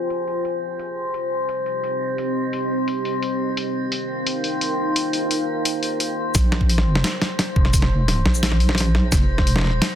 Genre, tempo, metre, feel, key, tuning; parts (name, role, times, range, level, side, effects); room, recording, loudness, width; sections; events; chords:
half-time drum and bass; 173 BPM; 4/4; half-time; A4 = 440 Hz
deep dark ambient pad; sustained chords; 0.0-6.3 s; C4 to Ab5; -25 LUFS; right 1 dB; chorus, built-in reverb, sidechain pumping
metallic inharmonic drone; texture; 0.0-10.0 s; C5; -27 LUFS; left 2 dB; chorus, built-in reverb
boom bap sampler-style drum kit; drums; 0.1-9.9 s; hi-hat, shaker, snare drum; -23 LUFS; equal
deep soft wobble bass; bass; 6.3-9.8 s; F1 to Bb1; -19 LUFS; equal; chorus
electronic kick drum; drums; 6.3-9.5 s; -19 LUFS; equal
light reverb; dense, heavily limited modern master, low-pass filter; -19 LUFS; side -10 dB against mid
0.0-6.3 A section; 6.3-10.0 B section
filter sweep on ambient pad 0.0-6.3; filter sweep 0.0-6.3; drop 6.3-10.0
0.0 Fm; 0.8 Cm; 3.6 Eb; 6.3 Bb5; 9.1 F5